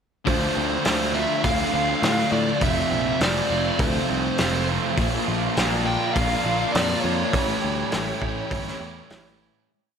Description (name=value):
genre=rock, shoegaze and dream pop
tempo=102 BPM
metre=4/4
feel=straight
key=D minor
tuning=A4 = 440 Hz
part: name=thick fuzz guitar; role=riff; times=0.2-9.7 s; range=F2 to D4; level=-28 LUFS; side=left 10 dB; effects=distortion, lush chorus
part: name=fuzz lead guitar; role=melody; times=0.3-9.3 s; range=C5 to G5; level=-27 LUFS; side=equal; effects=distortion, digital delay
part: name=direct-recorded clean electric guitar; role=arpeggios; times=0.3-9.7 s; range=E3 to G4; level=-34 LUFS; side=right 8 dB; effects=wide subtle chorus, digital delay
part: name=raw garage guitar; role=riff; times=0.3-9.7 s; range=F2 to F4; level=-27 LUFS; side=right 11 dB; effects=overdrive, reverse reverb
part: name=picked electric bass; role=bass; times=0.3-9.5 s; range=F1 to A2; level=-28 LUFS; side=equal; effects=none
part: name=loose indie drum kit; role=drums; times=0.3-9.2 s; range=hi-hat, kick drum, snare drum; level=-27 LUFS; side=equal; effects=none
part: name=chorused pulse-width pad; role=sustained chords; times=5.0-9.7 s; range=E4 to Bb5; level=-34 LUFS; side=left 1 dB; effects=none
room=light reverb, small room ambience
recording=none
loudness=-20 LUFS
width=side -7 dB against mid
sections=0.3-9.7 verse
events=fade-out 7.3-9.7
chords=0.3 Dm7; 2.6 Fmaj7; 5.0 Bbmaj7; 7.3 A7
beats=| 0.27 0.85 1.44 2.03 | 2.62 3.21 3.79 4.38 | 4.97 5.56 6.15 6.74 | 7.33 7.92 8.51 9.09